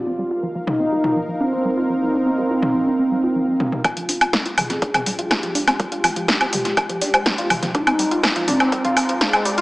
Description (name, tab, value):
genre	melodic techno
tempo	123 BPM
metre	4/4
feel	straight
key	F dorian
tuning	A4 = 440 Hz
part	expressive synth lead	melody	0.0-9.6 s	Ab3 to Ab4	-22 LUFS	equal	lush chorus, sidechain pumping, analog delay
part	dark analog pad	sustained chords	0.0-9.6 s	Ab3 to Bb5	-29 LUFS	equal	chorus, sidechain pumping
part	tight sequenced synth	arpeggios	0.0-9.6 s	F3 to F4	-25 LUFS	equal	chorus, sidechain pumping, tape echo
part	deep house drum kit	drums	0.7-9.6 s	hi-hat, snare drum, toms, woodblock	-19 LUFS	equal	overdrive, tape echo
part	round analog bass	bass	3.8-9.6 s	Eb1 to Ab2	-41 LUFS	equal	none
part	electronic kick drum	drums	3.8-9.3 s	none	-27 LUFS	equal	overdrive, high-pass filter on kick, high-pass filter on room
room	wet echo chamber reverb, RT60 1.9 s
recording	echo-heavy mix, high-pass filter, small speaker sound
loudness	-17 LUFS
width	side -20 dB against mid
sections	0.0-3.8 A section; 3.8-9.6 B section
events	filter sweep on drum 0.0-3.8; build-up 3.8-9.6; filter sweep on synth arpeggio sound 3.8-9.6; filter sweep on analog synth lead 3.8-9.6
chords	0.0 Ebsus2; 3.8 Fmadd9; 7.7 Abadd9